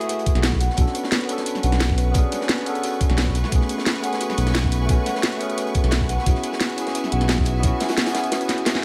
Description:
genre	liquid drum and bass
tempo	175 BPM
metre	4/4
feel	straight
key	B dorian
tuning	A4 = 440 Hz
part	bright tine electric piano	accompaniment	0.0-8.8 s	A3 to A4	-29 LUFS	equal	phaser, digital delay
part	bright studio string section	sustained chords	0.0-8.8 s	G#4 to C#6	-36 LUFS	equal	sidechain pumping
part	kalimba	arpeggios	0.0-8.8 s	F#4 to F#5	-32 LUFS	equal	dub echo
part	crunchy breakbeat drum kit	drums	0.0-8.8 s	hi-hat, snare drum	-33 LUFS	equal	high-pass filter on hats, high-pass filter on snare, high-pass filter on room
part	drum and bass drum kit	drums	0.0-8.8 s	hi-hat, snare drum	-27 LUFS	equal	none
part	electronic kick drum	drums	0.3-7.7 s	none	-23 LUFS	equal	none
part	smooth synth bass	bass	0.4-7.7 s	B1	-24 LUFS	equal	none
room	light reverb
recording	none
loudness	-21 LUFS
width	mono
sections	0.0-8.8 A section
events	kick drops out 8.3-8.8; drum fill 8.5-8.8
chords	0.0 F#m9; 0.6 Bm9; 3.3 Amaj9/B; 6.1 C#m7/B

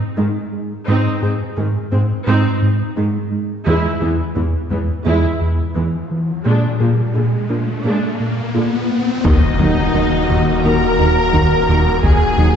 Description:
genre	cinematic, hybrid orchestral and electronic film score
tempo	86 BPM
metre	4/4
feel	straight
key	Eb minor from 9.2 s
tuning	A4 = 439 Hz
part	smooth synth bass	riff	0.0-12.6 s	Eb2 to Bb3	-19 LUFS	right 1 dB	none
part	rich symphonic viola section	accompaniment	0.2-12.6 s	D3 to Bb4	-23 LUFS	right 1 dB	none
part	tight sequenced synth	arpeggios	0.2-12.6 s	Eb3 to Ab4	-26 LUFS	left 1 dB	chorus, digital delay
part	rich symphonic cello section	bass	0.2-12.5 s	E2 to Eb3	-23 LUFS	right 1 dB	none
part	riser and impact	sound effects	6.3-12.0 s	none	-25 LUFS	left 2 dB	none
part	warm symphonic violin section	melody	9.2-12.6 s	Eb5 to Bb5	-22 LUFS	left 3 dB	none
part	clear symphonic violin section	second line	9.2-12.6 s	Eb4 to Bb4	-22 LUFS	left 2 dB	none
part	dark French horn section	sustained chords	9.2-12.6 s	Bb3 to Gb4	-21 LUFS	left 2 dB	none
part	snarling distorted saw bass	bass	9.2-12.6 s	Eb1	-22 LUFS	left 1 dB	distortion
part	warm symphonic double bass section	bass	9.2-12.5 s	Eb2	-23 LUFS	right 1 dB	none
part	warm tuba	bass	9.2-12.5 s	Eb2	-24 LUFS	right 2 dB	none
part	taiko ensemble	drums	9.2-12.6 s	none	-19 LUFS	left 1 dB	none
room	wet concert hall reverb, RT60 2.0 s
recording	heard from further back in the room, nothing above 8.0 kHz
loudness	-14 LUFS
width	side -8 dB against mid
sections	0.0-9.2 A section; 9.2-12.6 B section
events	build-up 0.0-9.2; riser 6.3-9.2; impact 9.2-12.0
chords	0.0 Ab; 3.7 E; 6.5 Bb7; 9.2 Ebm

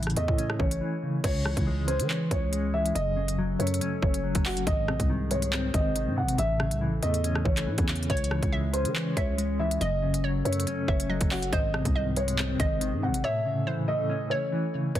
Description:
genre	hip hop, drill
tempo	140 BPM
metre	4/4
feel	half-time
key	C# harmonic minor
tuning	A4 = 439 Hz
part	mellow electric guitar	accompaniment	0.0-15.0 s	F#2 to C#5	-30 LUFS	left 1 dB	tremolo
part	growling 808-style bass	bass	0.0-15.0 s	F#1 to E3	-30 LUFS	equal	none
part	drill drum kit	drums	0.0-15.0 s	crash cymbal, handclaps, hi-hat, kick drum, rim click	-29 LUFS	equal	none
part	dark concert grand piano	melody	0.2-15.0 s	F#4 to F#5	-32 LUFS	equal	none
part	warbly tape-like pad	sustained chords	1.8-14.9 s	B#2 to A4	-38 LUFS	left 2 dB	chorus, built-in reverb
part	hollow square pluck	second line	8.1-14.9 s	B#4 to E5	-37 LUFS	right 2 dB	chorus, tape echo
room	little or no reverb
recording	dense, heavily limited modern master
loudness	-25 LUFS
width	side -12 dB against mid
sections	0.0-1.2 A section; 1.2-15.0 B section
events	break 0.8-1.2; drums muted 13.2-15.0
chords	0.0 A; 1.2 C#m; 3.0 F#m; 4.7 G#; 6.4 A; 8.1 C#m; 9.8 F#m; 11.5 G#; 13.2 A

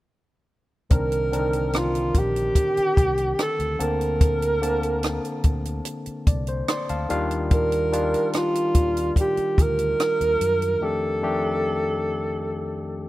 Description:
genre	lush 1970s-style soul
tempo	73 BPM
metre	4/4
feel	straight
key	unclear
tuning	A4 = 440 Hz
part	mellow alto saxophone	melody	0.9-13.1 s	F4 to Bb4	-23 LUFS	right 1 dB	none
part	barky tine electric piano	accompaniment	0.9-13.1 s	F2 to C6	-28 LUFS	left 2 dB	overdrive
part	fingered electric bass	bass	0.9-10.7 s	Bb1 to Gb2	-28 LUFS	equal	tube saturation
part	compact cocktail drum kit	drums	0.9-10.8 s	hi-hat, kick drum, rim click	-22 LUFS	equal	none
room	little or no reverb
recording	rough home demo mix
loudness	-20 LUFS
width	side -16 dB against mid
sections	0.9-13.1 A section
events	tine electric piano fill 6.3-7.5; break 10.8-13.1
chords	0.9 Cm9; 3.8 Bbmaj9/D; 7.1 Ebmaj9; 10.8 F13

